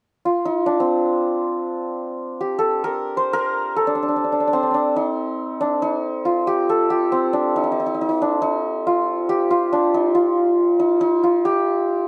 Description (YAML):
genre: persian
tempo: 92 BPM (dotted quarters)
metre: 6/8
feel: straight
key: unclear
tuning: A4 = 440 Hz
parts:
  - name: santur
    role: melody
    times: 0.3-12.1 s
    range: C4 to C5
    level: -20 LUFS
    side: equal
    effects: none
room: light reverb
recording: dark, warm production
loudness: -20 LUFS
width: mono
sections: 0.0-5.2 A section; 5.2-12.1 B section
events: none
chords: none